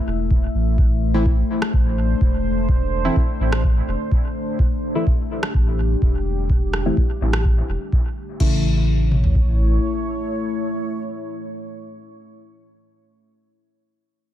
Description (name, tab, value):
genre	dub techno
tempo	126 BPM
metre	4/4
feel	straight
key	unclear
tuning	A4 = 441 Hz
part	deep dark ambient pad	sustained chords	0.0-12.8 s	A3 to E5	-26 LUFS	left 1 dB	chorus, built-in reverb, sidechain pumping
part	warm sub bass	bass	0.1-9.8 s	E1 to A1	-21 LUFS	equal	sidechain pumping
part	booming analog drum machine	drums	0.3-9.5 s	kick drum, toms	-19 LUFS	equal	none
part	deep mellow chord stab	stabs	1.1-12.8 s	C#3 to E4	-25 LUFS	left 1 dB	chorus, phaser, sidechain pumping, dub echo
part	deep house drum kit	drums	1.6-8.5 s	crash cymbal, rim click	-29 LUFS	right 1 dB	dub echo
room	little or no reverb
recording	none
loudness	-17 LUFS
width	side -12 dB against mid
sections	0.0-8.4 A section; 8.4-12.2 B section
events	filter sweep on synth stab 0.0-8.4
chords	0.0 Am; 8.4 A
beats	0.31 | 0.78 1.26 1.74 2.21 | 2.69 3.16 3.64 4.12 | 4.59 5.07 5.54 6.02 | 6.50 6.97 7.45 7.92 | 8.40 8.88 9.35 9.83 | 10.31 10.78 11.26 11.73